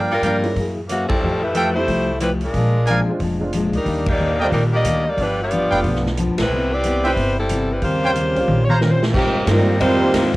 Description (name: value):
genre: jazz, big band swing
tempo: 182 BPM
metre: 4/4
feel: swing 63% on 8ths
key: unclear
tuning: A4 = 440 Hz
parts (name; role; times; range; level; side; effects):
- fingerpicked steel-string acoustic guitar; accompaniment; 0.0-10.4 s; G2 to C5; -24 LUFS; left 2 dB; cassette tape
- clear trumpet section; stabs; 0.0-8.8 s; A4 to Bb5; -21 LUFS; right 1 dB; cassette tape
- upright bass; bass; 0.0-10.4 s; F1 to Ab2; -23 LUFS; equal; none
- clear saxophone section; melody; 0.1-10.3 s; Eb3 to Eb5; -21 LUFS; equal; none
- swinging big-band drum kit; drums; 0.2-10.4 s; crash cymbal, hi-hat, kick drum, ride cymbal, snare drum, toms; -26 LUFS; equal; cassette tape
- warm concert grand piano; accompaniment; 0.4-10.4 s; G3 to F4; -26 LUFS; right 2 dB; cassette tape
- warm trombone section; second line; 7.8-10.3 s; C3 to C4; -21 LUFS; right 2 dB; cassette tape
room: light reverb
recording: home recording on cassette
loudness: -16 LUFS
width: side -19 dB against mid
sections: 0.0-9.1 A section; 9.1-10.4 B section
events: band accent 1.0, 4.0, 6.3; drum fill 8.5-9.1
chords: 0.0 Gm7; 0.6 F#9; 1.2 Fmaj9; 2.5 Bb7; 3.9 Ebmaj7; 5.2 G7; 6.5 Cmaj7; 7.8 Eb13; 9.1 Abmaj13